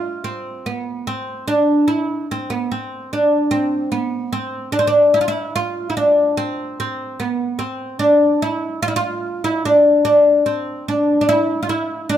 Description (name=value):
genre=turkish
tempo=73 BPM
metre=4/4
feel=straight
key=D makam huseyni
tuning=A4 = 440 Hz
part: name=oud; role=solo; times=0.0-12.2 s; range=B3-30c to F4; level=-16 LUFS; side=equal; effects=none
room=light reverb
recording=close, detailed microphones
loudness=-16 LUFS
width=side -10 dB against mid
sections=0.0-4.7 A section; 4.7-12.2 A section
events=none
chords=none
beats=0.62 | 1.44 2.26 3.08 3.90 | 4.72 5.54 6.37 7.19 | 8.01 8.83 9.65 10.47 | 11.29 12.11